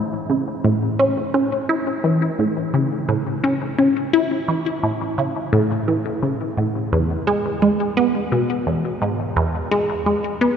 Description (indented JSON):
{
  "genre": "ambient",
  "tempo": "86 BPM",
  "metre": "4/4",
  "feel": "straight",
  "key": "A major",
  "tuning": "A4 = 439 Hz",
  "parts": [
    { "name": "resonant blip pluck", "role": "solo", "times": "0.0-10.6 s", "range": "E2 to E4", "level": "-18 LUFS", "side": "equal", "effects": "chorus, phaser, vintage 12-bit sampler grit, ping-pong delay" }
  ],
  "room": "wet cathedral reverb, RT60 5.5 s",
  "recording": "dreamy mix soaked in reverb",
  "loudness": "-18 LUFS",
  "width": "side -7 dB against mid",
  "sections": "0.0-10.6 A section",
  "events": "none",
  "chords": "none",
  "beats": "0.65 | 1.34 2.04 2.74 3.44 | 4.13 4.83 5.53 6.23 | 6.92 7.62 8.32 9.02 | 9.71 10.41"
}